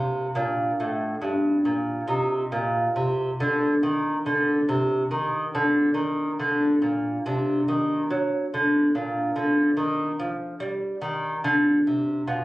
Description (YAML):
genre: classical, baroque-style dance for lute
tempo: 70 BPM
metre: 4/4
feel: rubato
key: G minor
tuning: A4 = 439 Hz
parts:
  - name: lute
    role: solo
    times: 0.0-12.4 s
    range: G2 to F4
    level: -22 LUFS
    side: equal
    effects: none
room: moderate booth ambience, RT60 0.2 s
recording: recorded on a phone in the room, club reverb, compression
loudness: -22 LUFS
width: side -18 dB against mid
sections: 0.0-12.4 A section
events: none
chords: 0.0 Gm; 2.1 Bbadd11; 7.3 D7/C; 9.0 Gm/Bb (rootless)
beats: 0.35 1.22 | 2.09 2.95 3.81 4.67 | 5.53 6.40 7.26 8.11 | 8.96 9.79 10.62 11.46 | 12.29